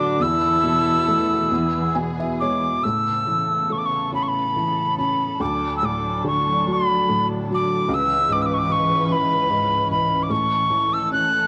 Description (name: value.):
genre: celtic folk, Celtic slow air.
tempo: 44-51 BPM (dotted quarters).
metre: 6/8.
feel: rubato.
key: A major.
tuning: A4 = 440 Hz.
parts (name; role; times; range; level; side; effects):
mellow mid whistle; melody; 0.0-11.5 s; B5 to F#6; -23 LUFS; equal; none.
dark viola; second line; 0.0-2.0 s; D4 to E4; -27 LUFS; equal; none.
felt-muted upright piano; accompaniment; 0.0-11.5 s; C#2 to G#5; -27 LUFS; equal; none.
dark chamber string section; sustained chords; 0.0-11.5 s; C#3 to B4; -31 LUFS; equal; none.
room: light reverb, studio ambience.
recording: none.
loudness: -21 LUFS.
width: mono.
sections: 0.0-2.8 A section; 2.8-11.5 B section.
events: felt piano fill 1.5-2.8.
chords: 0.2 Esus4; 1.5 E; 2.8 Aadd9; 5.4 D; 7.9 C#m7; 10.3 A.